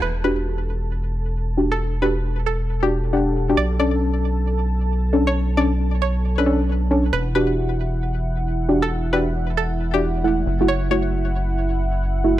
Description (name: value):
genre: UK garage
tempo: 135 BPM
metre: 4/4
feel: swing 64% on 16ths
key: E dorian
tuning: A4 = 440 Hz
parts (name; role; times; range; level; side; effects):
- string-like resonator pluck; melody; 0.0-11.1 s; G4 to D5; -26 LUFS; right 1 dB; chorus, ping-pong delay
- warm analog pad; sustained chords; 0.0-12.4 s; E4 to A5; -31 LUFS; right 1 dB; chorus
- rubbery square bass; bass; 0.0-12.4 s; E1 to B1; -22 LUFS; equal; none
- deep mellow chord stab; stabs; 0.2-12.4 s; A3 to F#5; -22 LUFS; equal; chorus, dub echo
room: light reverb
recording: none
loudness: -18 LUFS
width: side -13 dB against mid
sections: 0.0-12.4 A section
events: filter sweep on analog synth pad 0.0-12.4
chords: 0.0 Em9; 3.6 Bm9; 7.1 Em9; 10.5 F#m7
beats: | 0.02 0.46 0.91 1.35 | 1.80 2.24 2.69 3.13 | 3.58 4.02 4.46 4.91 | 5.35 5.80 6.24 6.69 | 7.13 7.58 8.02 8.46 | 8.91 9.35 9.80 10.24 | 10.69 11.13 11.57 12.02